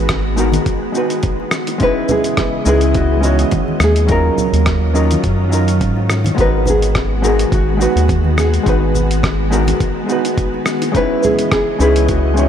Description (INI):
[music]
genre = sunset chillout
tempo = 105 BPM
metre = 4/4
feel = swing 55% on 16ths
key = G# minor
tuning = A4 = 440 Hz
[part]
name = nylon-string guitar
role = melody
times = 0.0-12.5 s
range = F#4 to B4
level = -19 LUFS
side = equal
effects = digital delay, shimmer reverb
[part]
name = hollow-body jazz guitar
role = accompaniment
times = 0.0-12.5 s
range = F#3 to C#5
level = -18 LUFS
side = moving between left 3 dB and right 4 dB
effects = auto-pan, digital delay, shimmer reverb
[part]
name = soft string machine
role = sustained chords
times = 0.0-12.5 s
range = C#3 to D#5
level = -23 LUFS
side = equal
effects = ensemble chorus, shimmer reverb
[part]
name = round analog bass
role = bass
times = 0.0-12.5 s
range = G#1 to G#2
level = -15 LUFS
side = equal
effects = none
[part]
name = dusty soul sampler-style drum kit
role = drums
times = 0.1-12.5 s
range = hi-hat, rim click, shaker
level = -22 LUFS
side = equal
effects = overdrive
[part]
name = electronic kick drum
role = drums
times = 0.1-12.2 s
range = none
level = -20 LUFS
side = equal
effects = overdrive
[part]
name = congas and bongos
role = percussion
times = 0.5-12.5 s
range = none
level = -25 LUFS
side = right 1 dB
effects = none
[sound]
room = light reverb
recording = none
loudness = -12 LUFS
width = side -9 dB against mid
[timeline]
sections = 0.0-12.5 A section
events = none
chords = 0.0 G#m9; 1.8 C#m9; 4.1 D#m9; 6.4 G#m9; 10.9 C#m9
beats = 0.09 0.66 1.23 | 1.80 2.38 2.95 3.52 | 4.09 4.66 5.23 5.80 | 6.38 6.95 7.52 8.09 | 8.66 9.23 9.80 10.38 | 10.95 11.52 12.09